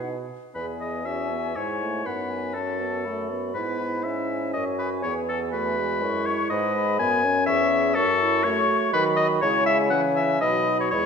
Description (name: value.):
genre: quick classical-period movement for wind quintet.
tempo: 122 BPM.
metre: 3/4.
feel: rubato.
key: E major.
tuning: A4 = 442 Hz.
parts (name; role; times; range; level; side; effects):
silver concert flute; melody; 0.0-11.1 s; F#5 to C#6; -31 LUFS; left 6 dB; none.
clear oboe; second line; 0.0-11.1 s; G#4 to G#5; -25 LUFS; left 3 dB; none.
mellow French horn; accompaniment; 0.0-11.1 s; E3 to D#4; -31 LUFS; left 3 dB; none.
warm clarinet; accompaniment; 0.0-11.1 s; C#4 to B4; -31 LUFS; right 7 dB; none.
mellow bassoon; bass; 0.0-11.1 s; E2 to D#3; -28 LUFS; right 2 dB; none.
room: moderate scoring stage reverb, RT60 1.7 s.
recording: minimal, uncompressed stereo recording.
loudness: -21 LUFS.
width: side -6 dB against mid.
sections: 0.5-11.1 A section.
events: none.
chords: 0.0 B; 0.5 E; 2.1 B7/F#; 3.5 E/G#; 5.0 E; 6.5 G#m; 7.5 C#m/E; 8.0 F#m; 8.9 B/D#; 9.4 C#m; 10.4 B.